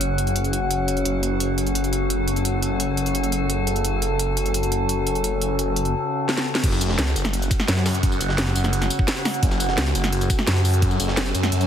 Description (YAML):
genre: dark technical drum and bass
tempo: 172 BPM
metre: 4/4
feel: straight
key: F# minor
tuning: A4 = 440 Hz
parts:
  - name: metallic inharmonic drone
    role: sustained chords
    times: 0.0-11.7 s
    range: C#3 to F#5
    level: -24 LUFS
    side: left 1 dB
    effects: chorus, built-in reverb, phaser, sidechain pumping
  - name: phased detuned saw bass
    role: bass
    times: 0.0-11.7 s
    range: F#1 to F#2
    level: -23 LUFS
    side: equal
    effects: phaser
  - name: drum and bass drum kit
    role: drums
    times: 0.0-11.7 s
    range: crash cymbal, hi-hat, snare drum, tambourine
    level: -25 LUFS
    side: equal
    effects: none
  - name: electronic kick drum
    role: drums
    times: 6.6-10.9 s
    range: none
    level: -22 LUFS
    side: equal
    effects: none
  - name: jungle sampler-style drum kit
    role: drums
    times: 6.6-11.6 s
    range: ride cymbal, snare drum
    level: -33 LUFS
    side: equal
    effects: none
room: light reverb, digital ambience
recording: heavily compressed radio sound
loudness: -19 LUFS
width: side -9 dB against mid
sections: 0.0-6.6 A section; 6.6-11.7 B section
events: drum fill 6.3-6.6; drop 6.6-11.7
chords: 0.0 F#5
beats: 0.01 0.36 0.71 | 1.05 1.40 1.75 2.10 | 2.45 2.80 3.15 3.50 | 3.85 4.19 4.54 4.89 | 5.24 5.59 5.94 6.29 | 6.64 6.99 7.33 7.68 | 8.03 8.38 8.73 9.08 | 9.43 9.78 10.12 10.47 | 10.82 11.17 11.52